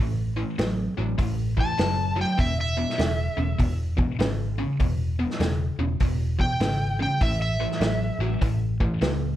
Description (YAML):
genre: blues rock power trio and southern rock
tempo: 100 BPM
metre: 4/4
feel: swing 64% on 8ths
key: A mixolydian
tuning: A4 = 440 Hz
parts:
  - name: overdriven electric guitar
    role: riff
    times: 0.0-9.4 s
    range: E2 to F#3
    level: -28 LUFS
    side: equal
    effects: none
  - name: vintage muted picked electric bass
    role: bass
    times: 0.0-9.4 s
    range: E1 to C#2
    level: -27 LUFS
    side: equal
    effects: none
  - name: vintage drum kit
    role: drums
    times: 0.6-9.2 s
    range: hi-hat, kick drum, snare drum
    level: -27 LUFS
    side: equal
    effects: none
  - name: overdriven slide guitar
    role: melody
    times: 1.6-8.6 s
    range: E5 to A5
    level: -28 LUFS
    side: equal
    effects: none
room: small room ambience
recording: none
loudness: -22 LUFS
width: side -13 dB against mid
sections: 0.0-9.4 A section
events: none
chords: 0.0 A5; 2.4 E; 7.2 A